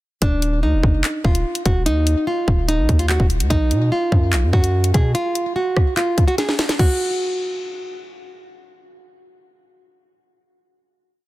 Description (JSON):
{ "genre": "hip hop, drill", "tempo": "146 BPM", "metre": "4/4", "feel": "half-time", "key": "Eb harmonic minor", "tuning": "A4 = 438 Hz", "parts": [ { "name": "nylon-string guitar", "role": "melody", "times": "0.2-8.0 s", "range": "D4 to Ab4", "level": "-22 LUFS", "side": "right 1 dB", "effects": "ping-pong delay" }, { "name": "long sustained 808-style bass", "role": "bass", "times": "0.2-5.1 s", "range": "Eb1 to B2", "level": "-19 LUFS", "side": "equal", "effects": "none" }, { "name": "drill drum kit", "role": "drums", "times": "0.2-6.9 s", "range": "crash cymbal, handclaps, hi-hat, kick drum, rim click, snare drum", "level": "-19 LUFS", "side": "equal", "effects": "none" } ], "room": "digital ambience", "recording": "dense, heavily limited modern master", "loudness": "-16 LUFS", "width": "side -17 dB against mid", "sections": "0.2-6.8 hook; 6.8-10.1 final note", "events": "drum fill 6.4-6.8", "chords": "0.2 Ebsus2; 3.5 B; 5.1 N.C." }